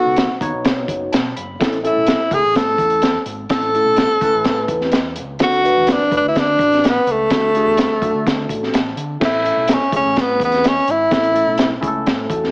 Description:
uptempo 1960s-style soul; 126 BPM; 4/4; straight; A major; A4 = 440 Hz
breathy tenor saxophone; melody; 0.0-11.8 s; A3 to A4; -15 LUFS; equal
barky tine electric piano; accompaniment; 0.0-12.5 s; A2 to B5; -23 LUFS; left 1 dB; overdrive, phaser
picked electric bass; bass; 0.1-12.5 s; F#1 to D3; -30 LUFS; equal
crunchy breakbeat drum kit; drums; 0.2-12.5 s; crash cymbal, hi-hat, kick drum, snare drum; -19 LUFS; equal
light reverb, studio reverb; heavily compressed radio sound, AM radio sound; -14 LUFS; side -34 dB against mid
0.0-9.2 A section; 9.2-12.5 A section
tine electric piano fill 0.9-1.6, 8.5-9.2
0.0 B; 1.6 A; 5.4 D; 9.2 A

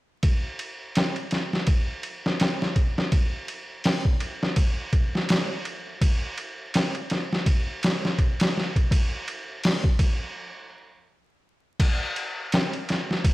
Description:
trip hop; 83 BPM; 4/4; swing 58% on 16ths
trip hop sampler-style drum kit; drums; 0.2-13.3 s; crash cymbal, hi-hat, kick drum, ride cymbal, snare drum; -23 LUFS; equal
little or no reverb; dry, gritty hardware recording, vinyl crackle; -23 LUFS; side -18 dB against mid
0.2-11.8 A section; 11.8-13.3 B section
stop 10.4-11.8

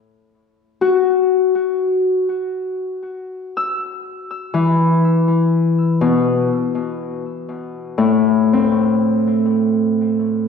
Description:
ambient; free time; C lydian; A4 = 442 Hz
Celtic harp; solo; 0.8-10.5 s; A2 to E6; -15 LUFS; left 2 dB; tape echo
wet lush hall reverb, RT60 2.2 s; home recording on cassette; -15 LUFS; side -6 dB against mid
0.0-10.5 A section
0.0 N.C.; 6.4 C

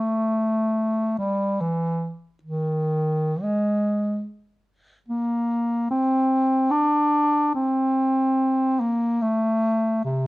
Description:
classical, free, expressive piece for unaccompanied bass clarinet; 56-75 BPM; 3/4; rubato; A4 = 442 Hz
mellow bass clarinet; solo; 0.0-10.3 s; C3 to D4; -20 LUFS; equal
light reverb; worn, warbling old tape, cassette tape, warbly pitch drift; -20 LUFS; side -20 dB against mid
0.0-10.3 A section

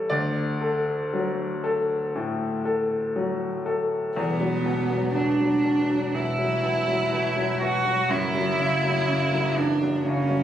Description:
neoclassical piano and strings; 61 BPM; 4/4; rubato; A4 = 443 Hz
bright upright piano; accompaniment; 0.0-10.4 s; D2 to D5; -25 LUFS; left 2 dB
warm cello; second line; 4.2-10.4 s; B3 to F#4; -24 LUFS; right 2 dB
warm double bass; bass; 4.2-10.4 s; E1 to F#1; -31 LUFS; right 1 dB
wet recital hall reverb, RT60 1.6 s; recorded on a phone in the room, studio reverb, compression; -22 LUFS; side -10 dB against mid
0.0-4.2 A section; 4.2-10.4 A section
0.1 D; 4.2 Esus2; 8.1 F#5

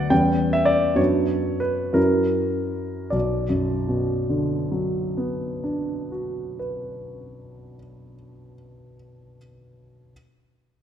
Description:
classical, romantic character piece for solo piano; 48-74 BPM (dotted quarters); 6/8; rubato; B minor; A4 = 440 Hz
warm concert grand piano; solo; 0.0-10.1 s; B1 to G5; -21 LUFS; equal
wet concert hall reverb, RT60 1.9 s; -21 LUFS; side -9 dB against mid
0.0-3.1 A section; 3.1-7.9 B section
slowing down 0.0-3.1
0.1 C#m7b5/E; 1.0 Bm/F#; 2.0 F#7; 3.1 Bm

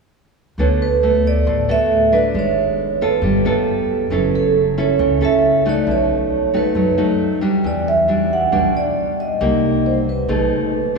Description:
bossa nova; 136 BPM; 4/4; straight; D major; A4 = 440 Hz
vibraphone with soft mallets; melody; 0.6-10.9 s; A4 to F#5; -18 LUFS; right 3 dB
nylon-string guitar; accompaniment; 0.6-11.0 s; A2 to B4; -18 LUFS; right 1 dB
upright bass; bass; 0.6-10.5 s; F#1 to F#2; -22 LUFS; left 1 dB
wet cathedral reverb, RT60 4.3 s; recorded in a church or concert hall, small room ambience; -15 LUFS; side -4 dB against mid
0.6-11.0 A section
0.6 D6; 2.3 G#m7b5; 3.2 G9; 4.1 F#m7; 5.9 B7; 7.6 Em9; 9.4 Cm7; 10.3 B6

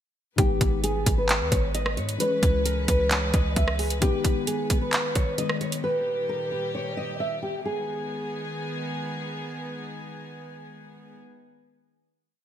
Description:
hip hop, trap; 132 BPM; 4/4; half-time; G# harmonic minor; A4 = 440 Hz
nylon-string guitar; melody; 0.4-9.0 s; G4 to E5; -28 LUFS; equal
felt-muted upright piano; accompaniment; 0.4-5.9 s; D#3 to C#5; -33 LUFS; left 5 dB; ensemble chorus
warm studio string section; sustained chords; 0.4-11.2 s; A#2 to B4; -34 LUFS; equal
clean 808-style bass; bass; 0.4-4.0 s; G#1 to G#2; -27 LUFS; equal
trap drum kit; drums; 0.4-5.8 s; handclaps, hi-hat, kick drum, rim click; -24 LUFS; equal
moderate lush hall reverb, RT60 1.7 s, small room reverb; bright 1980s-style digital production; -23 LUFS; side -10 dB against mid
0.4-7.7 hook; 7.7-11.3 final chord
0.4 G#m; 2.2 C#m; 4.0 G#m; 5.8 D#; 7.7 G#m

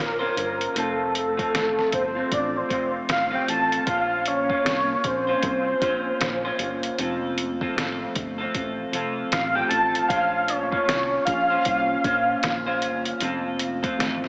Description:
indie pop, bedroom pop; 77 BPM; 4/4; swing 60% on 16ths; F major; A4 = 441 Hz
soft octave-layered synth lead; melody; 0.0-13.2 s; A4 to A5; -23 LUFS; equal; ensemble chorus, diffuse ambient delay
electric guitar through a small old amp; accompaniment; 0.0-14.3 s; F3 to C5; -27 LUFS; equal; wide subtle chorus, vibrato effect
chorused synth bass; bass; 0.0-14.3 s; F1 to C2; -35 LUFS; equal
lo-fi sampler-style drum kit; drums; 0.4-14.3 s; hi-hat, kick drum, snare drum; -28 LUFS; equal
warbly tape-like pad; sustained chords; 3.9-14.3 s; F3 to Db4; -34 LUFS; equal; chorus, built-in reverb
wet plate reverb, RT60 2.7 s; dreamy mix soaked in reverb, small speaker sound; -21 LUFS; side -33 dB against mid
0.0-14.3 A section
soft synth lead solo 0.0-14.3
0.0 Bbmadd9; 0.8 F; 3.9 Bbmadd9; 7.0 F; 10.1 Bbmadd9; 13.2 F

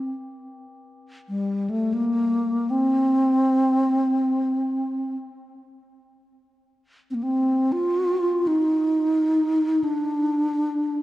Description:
world meditative, free-time meditation music; free time; C dorian; A4 = 442 Hz
breathy bass flute; melody; 0.0-11.0 s; G3 to F4; -20 LUFS; equal
tubular bells; texture; 0.0-3.0 s; G4; -53 LUFS; left 1 dB
wet church reverb, RT60 3.1 s; worn, warbling old tape, cassette tape, warbly pitch drift; -20 LUFS; side -16 dB against mid
0.0-11.0 A section

